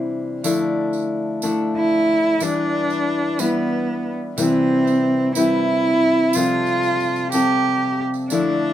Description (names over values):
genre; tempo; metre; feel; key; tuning
acoustic folk duo or small band; 61 BPM (dotted quarters); 6/8; straight; unclear; A4 = 440 Hz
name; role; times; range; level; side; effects
picked steel-string acoustic guitar; accompaniment; 0.0-8.7 s; C3 to C5; -21 LUFS; left 2 dB; none
tambourine; percussion; 0.4-8.5 s; none; -31 LUFS; right 6 dB; none
rich cello; melody; 1.8-8.7 s; B3 to G4; -19 LUFS; right 2 dB; none
room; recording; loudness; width
moderate studio reverb, RT60 0.5 s; band playing live in one room; -17 LUFS; side -11 dB against mid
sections
0.4-8.7 A section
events
none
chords
0.4 Dmadd9; 2.4 Em7; 4.4 Cmaj7; 6.3 Fadd9/C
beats
| 0.45 1.43 | 2.41 3.39 | 4.37 5.36 | 6.34 7.32 | 8.30